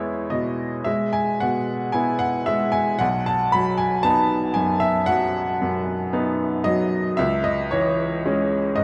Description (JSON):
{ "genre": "classical, romantic nocturne for solo piano", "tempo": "57 BPM", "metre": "4/4", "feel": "rubato", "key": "E major", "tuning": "A4 = 440 Hz", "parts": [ { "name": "bright upright piano", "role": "solo", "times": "0.0-8.8 s", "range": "B1 to B5", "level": "-22 LUFS", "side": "equal", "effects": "none" } ], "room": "moderate concert hall reverb, RT60 1.9 s", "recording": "dark, warm production", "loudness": "-22 LUFS", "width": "mono", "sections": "0.0-8.8 A section", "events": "none", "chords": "0.0 E; 3.0 B; 7.2 C#m" }